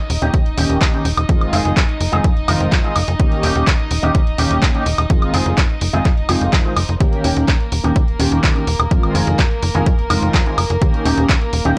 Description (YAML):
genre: filtered disco house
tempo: 126 BPM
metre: 4/4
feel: straight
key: F minor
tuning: A4 = 440 Hz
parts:
  - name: bright chamber string section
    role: sustained chords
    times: 0.0-11.8 s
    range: Bb3 to Eb5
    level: -29 LUFS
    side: equal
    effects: vintage 12-bit sampler grit, sidechain pumping, low-pass filter
  - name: slap-like FM bass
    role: bass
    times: 0.1-11.7 s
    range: Eb1 to F2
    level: -22 LUFS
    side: equal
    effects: tube saturation, sidechain pumping, low-pass filter
  - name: punchy analog drum machine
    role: drums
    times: 0.1-11.7 s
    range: handclaps, hi-hat, woodblock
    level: -24 LUFS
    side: equal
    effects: sidechain pumping on hats, sidechain pumping on perc
  - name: mellow synth brass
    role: accompaniment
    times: 0.2-11.7 s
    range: Eb3 to G4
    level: -25 LUFS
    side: equal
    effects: chorus, phaser, sidechain pumping, low-pass filter
  - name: electric guitar with an envelope filter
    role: riff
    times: 0.2-11.8 s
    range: Db4 to Ab5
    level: -24 LUFS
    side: equal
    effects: analog chorus, sidechain pumping, low-pass filter
  - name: electronic kick drum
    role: drums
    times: 0.3-11.4 s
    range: none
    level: -18 LUFS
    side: equal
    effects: none
room: little or no reverb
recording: dry, gritty hardware recording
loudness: -16 LUFS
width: mono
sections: 0.0-11.8 A section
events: clean electric guitar fill 6.1-7.0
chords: 0.0 Eb7; 1.3 Fm7; 3.2 Eb7; 5.1 Fm7; 7.0 Eb7; 8.9 Fm7; 10.8 Eb7